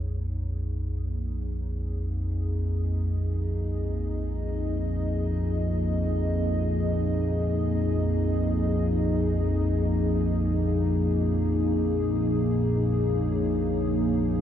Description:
dark ambient drone; free time; A4 = 440 Hz
dark analog pad; sustained chords; 0.0-14.4 s; Bb3 to Eb5; -29 LUFS; left 1 dB; chorus, shimmer reverb
analog drone; drone; 0.0-14.4 s; Bb1 to F2; -26 LUFS; equal; chorus
wet huge ambient reverb, RT60 8.0 s; dark, warm production; -24 LUFS; side -10 dB against mid
0.0-14.4 A section
fade-in on analog synth pad 0.0-14.4; filter sweep on synth drone 0.0-14.4
0.0 Db69/Bb

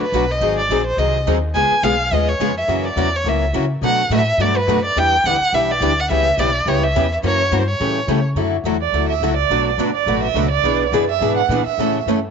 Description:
acoustic string swing (jazz manouche); 211 BPM; 4/4; swing 57% on 8ths; D major from 8.4 s; A4 = 440 Hz
warm violin; melody; 0.0-8.2 s; B4 to G#5; -18 LUFS; right 1 dB
picked old ladder-braced acoustic guitar; accompaniment; 0.0-12.2 s; B2 to A4; -22 LUFS; left 14 dB
picked steel-string acoustic guitar; accompaniment; 0.0-12.2 s; B2 to B4; -24 LUFS; right 13 dB
upright bass; bass; 0.0-12.3 s; G1 to C#3; -22 LUFS; equal
dark violin; second line; 8.8-12.0 s; D5 to F#5; -19 LUFS; right 13 dB
light reverb, studio reverb; 1960s-style stereo with parts hard left and right, nothing above 7.7 kHz; -15 LUFS; side -6 dB against mid
0.0-8.4 A section; 8.4-12.3 B section
violin solo 8.4-12.3
0.4 G#7; 1.5 C#7; 2.7 F#7; 3.8 Bm7; 5.0 Em7; 6.1 C#m7b5; 7.2 F#7; 7.8 A7; 8.4 Dadd9; 9.5 Bm7; 10.6 E7/B; 11.8 A

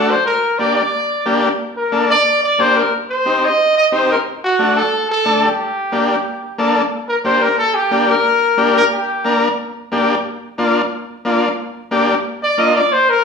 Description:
latin; 180 BPM; 4/4; straight; G harmonic minor, G minor from 6.9 s; A4 = 440 Hz
warm trumpet; melody; 0.0-9.4, 12.4-13.2 s; F#4 to Eb5; -14 LUFS; equal
overdriven combo organ; accompaniment; 0.0-12.8 s; A3 to Bb4; -17 LUFS; left 2 dB
wet large studio reverb, RT60 1.1 s; band playing live in one room, small room ambience; -13 LUFS; side -5 dB against mid
0.0-6.9 A section; 6.9-13.2 B section
0.3 Gm; 2.9 Cm; 4.3 D; 5.6 Gm

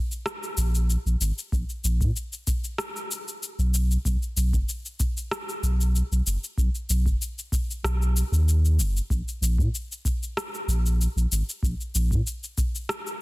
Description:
sunset chillout; 95 BPM; 4/4; straight; A4 = 440 Hz
electronic cabasa and rim click; drums; 0.1-13.2 s; -32 LUFS; left 1 dB; small room ambience, soft clipping on snare
warm sub bass; bass; 0.6-12.2 s; F#1 to Bb2; -22 LUFS; equal
electronic kick drum; drums; 1.5-12.7 s; -26 LUFS; equal; small room ambience
little or no reverb; dense, heavily limited modern master; -23 LUFS; side -21 dB against mid
0.0-13.2 A section

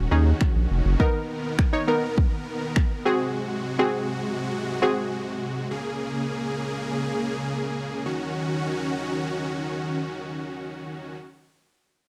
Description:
dance-pop; 102 BPM; 4/4; straight; Eb minor; A4 = 440 Hz
supersaw chords; sustained chords; 0.0-11.2 s; C3 to A#4; -31 LUFS; equal; sidechain pumping
saturated sub bass; bass; 0.0-1.0 s; F1 to Eb2; -22 LUFS; equal; sidechain pumping
glassy wavetable pluck; accompaniment; 0.1-5.3 s; B3 to Db5; -27 LUFS; equal; chorus, sidechain pumping
pop drum kit; drums; 0.4-2.9 s; finger snaps, kick drum; -24 LUFS; equal; overdrive
digital ambience; dry, close 1970s-style studio recording; -26 LUFS; mono
0.0-8.1 A section; 8.1-10.4 B section
0.0 Ebm7; 1.0 Bmaj7; 3.1 Ab7/C; 5.7 Bbm7/Db; 8.1 Ebm7

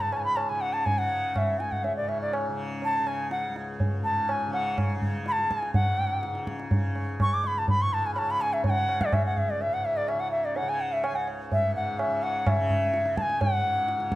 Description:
indian classical, Hindustani; 124 BPM; 4/4; straight; C# raga bhairavi; A4 = 441 Hz
bright reedy bansuri; melody; 0.0-14.1 s; C#5 to D6; -26 LUFS; equal
tanpura; drone; 0.0-14.2 s; C#2 to C#3; -35 LUFS; left 2 dB
tabla; percussion; 0.1-14.2 s; -29 LUFS; right 1 dB
moderate recital hall reverb, RT60 1.5 s; -24 LUFS; side -16 dB against mid
0.0-5.8 A section; 5.8-14.2 B section
speeding up 0.0-14.2

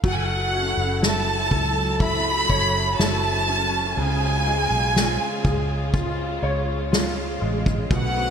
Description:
pop ballad; 61 BPM; 4/4; straight; F# minor; A4 = 440 Hz
bright concert grand piano; accompaniment; 0.0-8.3 s; B2 to C#5; -29 LUFS; left 2 dB; ensemble chorus
warm chamber string section; sustained chords; 0.0-8.3 s; C#3 to A4; -30 LUFS; equal
vintage muted fingered electric bass; bass; 0.0-8.3 s; F#1 to C#2; -26 LUFS; equal
soft-mallet drum kit; drums; 0.0-8.1 s; crash cymbal, kick drum, ride cymbal, snare drum; -25 LUFS; equal; gated reverb
warm studio violin section; melody; 0.1-8.3 s; F#5 to B5; -23 LUFS; right 1 dB
moderate lush hall reverb, RT60 3.4 s; bright 1980s-style digital production; -20 LUFS; side -7 dB against mid
0.0-8.3 A section
0.0 F#m7; 4.0 C#

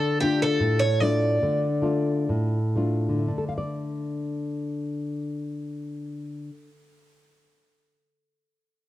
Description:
fado; 50-79 BPM; 2/4; rubato; D minor; A4 = 440 Hz
picked twelve-string acoustic guitar; melody; 0.0-2.3 s; G4 to D5; -25 LUFS; right 1 dB; cassette tape, plate reverb
nylon-string guitar; accompaniment; 0.0-7.0 s; A2 to F5; -25 LUFS; left 1 dB; cassette tape, plate reverb
wet small room reverb, RT60 0.5 s; home recording on cassette; -23 LUFS; side -14 dB against mid
0.0-3.3 A section; 3.3-7.9 B section
slowing down 0.0-3.3
0.0 Dm; 3.3 D5

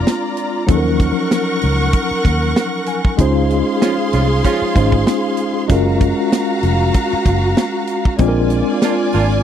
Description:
lush 1970s-style soul; 96 BPM; 4/4; swing 54% on 16ths; Db major; A4 = 440 Hz
rich studio string section; second line; 0.0-9.4 s; F4 to Db6; -20 LUFS; right 1 dB
tine electric piano; accompaniment; 0.0-9.4 s; F3 to Ab5; -18 LUFS; left 2 dB; overdrive, medium stereo tremolo
vintage muted fingered electric bass; bass; 0.0-9.4 s; F1 to Eb2; -17 LUFS; equal
tight funk drum kit; drums; 0.1-9.4 s; hi-hat, kick drum, snare drum; -16 LUFS; right 1 dB
warm horn section; stabs; 3.8-4.9, 8.8-9.3 s; F3 to F4; -22 LUFS; right 9 dB
little or no reverb; dry, close 1970s-style studio recording; -14 LUFS; side -9 dB against mid
0.0-9.4 A section
tine electric piano fill 2.3-3.2
0.0 Bb7; 0.7 Ebm7; 3.2 Dbmaj7; 5.7 Gbmaj7; 8.2 Bb7

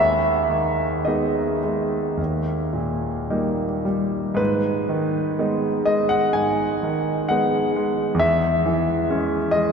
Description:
classical, romantic nocturne for solo piano; 52-68 BPM; 4/4; rubato; G# minor; A4 = 440 Hz
clear concert grand piano; solo; 0.0-9.7 s; D#2 to G#5; -19 LUFS; equal
wet cathedral reverb, RT60 6.5 s; minimal, uncompressed stereo recording; -19 LUFS; side -6 dB against mid
0.0-9.7 A section
0.0 G#m/D#; 2.2 D#; 4.4 G#m; 8.2 C#m/E

